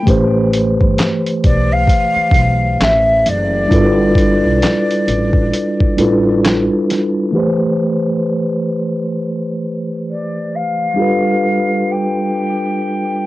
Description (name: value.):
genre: lo-fi hip hop.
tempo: 66 BPM.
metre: 4/4.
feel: swing 59% on 16ths.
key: A minor.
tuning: A4 = 444 Hz.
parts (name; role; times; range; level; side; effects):
breathy mellow jazz flute; melody; 0.0-13.3 s; D5 to G5; -17 LUFS; left 1 dB; low-pass filter, cassette tape.
mellow tine electric piano; accompaniment; 0.0-13.3 s; E3 to C5; -16 LUFS; equal; medium stereo tremolo, low-pass filter, cassette tape.
upright bass; bass; 0.1-6.7 s; F#1 to B1; -18 LUFS; equal; none.
lo-fi sampler-style drum kit; drums; 0.1-7.1 s; handclaps, hi-hat, kick drum, snare drum; -14 LUFS; equal; vintage 12-bit sampler grit, cassette tape.
room: moderate booth ambience, RT60 0.2 s.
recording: home recording on cassette.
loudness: -13 LUFS.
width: side -17 dB against mid.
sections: 0.0-7.3 A section; 7.3-13.3 B section.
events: filter sweep 7.3-13.3.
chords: 0.1 Am9; 3.7 G13; 7.3 Am9; 11.0 G9.